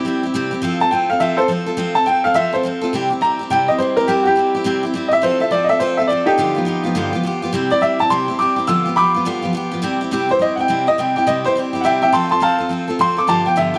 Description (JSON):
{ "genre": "rock", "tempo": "209 BPM", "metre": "4/4", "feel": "swing 63% on 8ths", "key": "C major", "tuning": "A4 = 440 Hz", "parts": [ { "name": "picked steel-string acoustic guitar", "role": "accompaniment", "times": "0.0-13.8 s", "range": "G2 to A4", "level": "-22 LUFS", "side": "equal", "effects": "none" }, { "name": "clear upright piano", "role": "melody", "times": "0.8-13.8 s", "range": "Eb4 to E6", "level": "-18 LUFS", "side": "equal", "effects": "none" } ], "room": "moderate echo chamber reverb, RT60 2.1 s", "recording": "none", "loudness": "-17 LUFS", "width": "mono", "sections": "0.6-9.8 A section; 9.8-13.8 B section", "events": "none", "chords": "0.0 C; 0.6 F; 2.9 C; 5.2 F; 6.4 G7; 7.5 C; 8.7 G7; 9.8 C; 12.1 F" }